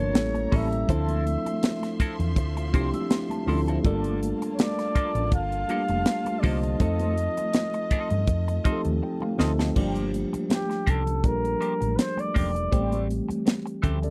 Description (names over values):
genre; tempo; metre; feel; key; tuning
lush 1970s-style soul; 81 BPM; 4/4; swing 54% on 16ths; G dorian; A4 = 443 Hz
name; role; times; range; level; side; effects
breathy flugelhorn; melody; 0.0-13.1 s; G4 to F5; -32 LUFS; equal; none
tine electric piano; accompaniment; 0.0-14.1 s; C3 to A5; -32 LUFS; equal; none
warm studio string section; sustained chords; 0.0-9.7 s; F3 to C6; -44 LUFS; equal; none
hollow-body short-scale fingered electric bass; bass; 0.0-14.1 s; E1 to G2; -30 LUFS; equal; none
congas; percussion; 0.1-14.1 s; none; -38 LUFS; equal; none
tight funk drum kit; drums; 0.2-14.1 s; crash cymbal, hi-hat, kick drum, snare drum; -26 LUFS; equal; none
clean electric guitar; riff; 0.3-14.1 s; E3 to C5; -37 LUFS; equal; wah
celesta; texture; 2.9-3.8 s; A5 to E6; -43 LUFS; equal; none
room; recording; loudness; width
little or no reverb; dry, close 1970s-style studio recording; -26 LUFS; mono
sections
0.0-9.8 A section; 9.8-14.1 B section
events
tine electric piano fill 8.3-9.8; drum fill 9.0-9.8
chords
0.2 A7b9; 0.9 Dm9; 3.8 Gm9; 6.8 F7; 9.8 Gm7; 12.7 Am7